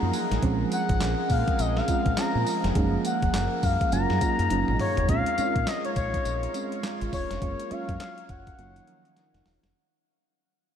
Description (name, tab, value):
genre	R&B, new jack swing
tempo	103 BPM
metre	4/4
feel	swing 61% on 16ths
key	Bb minor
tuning	A4 = 439 Hz
part	expressive synth lead	melody	0.0-9.5 s	Db5 to Bb5	-29 LUFS	left 4 dB	chorus, ping-pong delay
part	mellow FM electric piano	accompaniment	0.0-9.8 s	F3 to F4	-30 LUFS	right 5 dB	chorus
part	warm analog pad	sustained chords	0.0-9.7 s	Eb3 to F5	-34 LUFS	right 1 dB	chorus
part	deep dub fingered electric bass	bass	0.0-9.7 s	E1 to Bb2	-29 LUFS	equal	none
part	crisp 8-bit digital drum machine	drums	0.1-9.7 s	handclaps, hi-hat, kick drum, snare drum, tambourine, toms	-30 LUFS	equal	overdrive
room	moderate huge ambient reverb, RT60 7.6 s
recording	dreamy mix soaked in reverb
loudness	-23 LUFS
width	side -8 dB against mid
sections	0.0-5.1 A section; 5.1-9.7 B section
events	drum fill 4.5-5.1, 9.2-9.7; fade-out 5.1-9.7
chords	0.4 Bbm7; 2.8 Gbmaj7; 3.9 Ebm7/Gb; 5.1 Bbm7; 7.4 Gbmaj7; 8.6 Ebm7/Gb